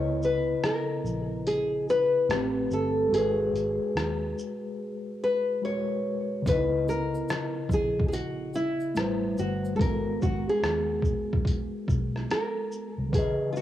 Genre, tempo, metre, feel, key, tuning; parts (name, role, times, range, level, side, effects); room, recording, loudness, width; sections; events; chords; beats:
lo-fi hip hop; 72 BPM; 4/4; swing 65% on 16ths; A4 = 440 Hz
nylon-string guitar; melody; 0.0-13.6 s; E4 to C#5; -28 LUFS; left 1 dB; cassette tape, analog delay
mellow tine electric piano; accompaniment; 0.0-13.6 s; C#3 to D#5; -31 LUFS; left 1 dB; medium stereo tremolo
vintage muted fingered electric bass; bass; 0.0-13.1 s; G1 to D#2; -34 LUFS; equal
trip hop sampler-style drum kit; drums; 0.2-13.6 s; hi-hat, kick drum, rim click, shaker; -29 LUFS; equal
egg shaker; percussion; 6.5-9.8 s; -57 LUFS; right 4 dB
light reverb; home recording on cassette, small room ambience; -25 LUFS; side -12 dB against mid
0.0-13.6 A section
break 0.0-6.5; silent gap 4.8-6.5
0.0 C#m9; 2.3 Am9; 3.1 G#m9; 6.5 C#m9; 9.0 Am9; 9.8 G#m9
0.63 1.46 2.29 | 3.13 3.96 4.79 5.63 | 6.46 7.29 8.13 8.96 | 9.79 10.63 11.46 12.29 | 13.13